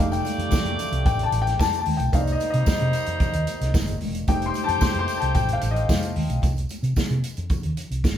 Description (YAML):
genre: disco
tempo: 112 BPM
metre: 4/4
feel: straight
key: unclear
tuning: A4 = 440 Hz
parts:
  - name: warm concert grand piano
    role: accompaniment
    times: 0.0-6.5 s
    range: Eb3 to C6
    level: -26 LUFS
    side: left 3 dB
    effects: none
  - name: bright horn section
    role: stabs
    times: 0.0-6.1 s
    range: G3 to D5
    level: -29 LUFS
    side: right 1 dB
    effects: none
  - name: hollow-body short-scale fingered electric bass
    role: bass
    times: 0.0-8.2 s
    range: E1 to C3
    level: -26 LUFS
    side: equal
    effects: none
  - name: vintage drum kit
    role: drums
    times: 0.1-8.2 s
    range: hi-hat, kick drum, snare drum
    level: -24 LUFS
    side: equal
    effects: none
  - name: tambourine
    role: percussion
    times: 0.1-8.2 s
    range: none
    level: -42 LUFS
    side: right 4 dB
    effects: none
  - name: congas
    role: percussion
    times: 0.2-8.2 s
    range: none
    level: -36 LUFS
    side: left 3 dB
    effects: none
room: moderate small room reverb, RT60 0.5 s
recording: band playing live in one room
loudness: -21 LUFS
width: side -10 dB against mid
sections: 0.0-6.4 A section; 6.4-8.2 B section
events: grand piano solo 0.0-6.4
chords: 0.0 F9; 2.1 Cm9; 4.3 F9; 6.4 N.C.